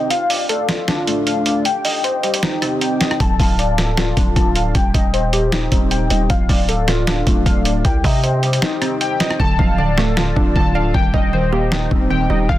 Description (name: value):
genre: hip hop, trap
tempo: 155 BPM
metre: 4/4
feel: half-time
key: D phrygian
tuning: A4 = 440 Hz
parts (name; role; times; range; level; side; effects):
- warbly lo-fi synth keys; arpeggios; 0.0-12.6 s; A3 to A5; -19 LUFS; left 1 dB; chorus, low-pass filter, digital delay
- dusty soul sampler-style drum kit; drums; 0.1-12.6 s; hi-hat, kick drum, rim click, snare drum; -18 LUFS; equal; overdrive
- growling 808-style bass; bass; 3.2-12.6 s; D1 to C3; -19 LUFS; equal; none
- mallet-like synth pluck; accompaniment; 9.4-12.6 s; D3 to D5; -22 LUFS; right 4 dB; chorus, low-pass filter
room: little or no reverb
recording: dense, heavily limited modern master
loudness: -14 LUFS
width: side -14 dB against mid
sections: 0.0-12.6 A section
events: break 0.0-3.2, 8.6-9.4; filter sweep 0.0-9.4; hi-hats muted 9.4-12.6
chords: 0.1 Dm; 1.7 Cm; 3.2 Dm; 4.8 Eb6; 6.3 Dm; 7.8 Cm; 9.4 Dm; 10.9 Eb6